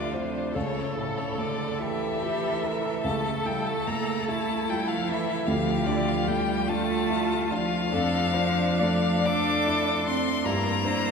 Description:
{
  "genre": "classical, slow romantic movement for piano quintet",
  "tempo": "48 BPM (dotted quarters)",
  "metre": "6/8",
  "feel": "uneven beats, rubato",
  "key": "D minor",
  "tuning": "A4 = 443 Hz",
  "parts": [
    { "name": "rich violin", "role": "melody", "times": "0.0-11.1 s", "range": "A4 to D6", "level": "-30 LUFS", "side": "left 5 dB", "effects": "none" },
    { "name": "clear cello", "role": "second line", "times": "0.0-11.1 s", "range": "A2 to D4", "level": "-29 LUFS", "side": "right 3 dB", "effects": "none" },
    { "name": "rich violin", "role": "second line", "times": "0.0-11.1 s", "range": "F4 to D5", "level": "-34 LUFS", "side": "left 3 dB", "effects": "none" },
    { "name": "clear viola", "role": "accompaniment", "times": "0.0-11.1 s", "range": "D4 to A4", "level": "-33 LUFS", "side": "right 2 dB", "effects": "none" },
    { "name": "dark baby grand piano", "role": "accompaniment", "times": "0.0-11.1 s", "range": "C#2 to G4", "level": "-30 LUFS", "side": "equal", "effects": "none" }
  ],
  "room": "wet cathedral reverb, RT60 5.7 s",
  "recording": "recorded in a church or concert hall",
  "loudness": "-24 LUFS",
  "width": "side -5 dB against mid",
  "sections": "0.0-11.1 A section",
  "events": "none",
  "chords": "0.0 Dm; 0.6 A/C#; 5.5 Dm; 7.9 Dm/F; 10.5 Em7b5/G"
}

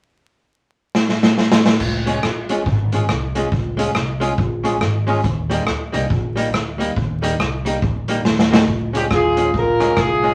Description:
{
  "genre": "ska",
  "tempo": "140 BPM",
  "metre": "4/4",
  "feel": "swing 62% on 8ths",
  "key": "unclear",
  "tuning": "A4 = 442 Hz",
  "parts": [
    { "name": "street-band drum kit", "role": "drums", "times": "0.9-10.3 s", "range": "crash cymbal, hi-hat, kick drum, rim click, snare drum", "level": "-21 LUFS", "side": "equal", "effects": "none" },
    { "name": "upright bass", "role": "bass", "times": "1.8-10.3 s", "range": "Ab1 to Eb2", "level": "-26 LUFS", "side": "equal", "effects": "none" },
    { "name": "archtop guitar, miked and amplified", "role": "accompaniment", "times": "2.1-10.3 s", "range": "G3 to Ab4", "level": "-24 LUFS", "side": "equal", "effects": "tape echo" },
    { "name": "mellow horn section", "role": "melody", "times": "9.0-10.3 s", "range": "Eb4 to Bb4", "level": "-18 LUFS", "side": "equal", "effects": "none" }
  ],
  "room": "wet studio reverb, RT60 0.5 s",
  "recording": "vinyl crackle",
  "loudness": "-18 LUFS",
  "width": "mono",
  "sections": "0.1-1.8 A section; 1.8-8.7 B section; 8.7-10.3 C section",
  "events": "drum fill 0.9-1.8, 8.3-8.7",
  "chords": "0.1 N.C.; 1.8 Db; 5.2 Eb; 8.7 Db"
}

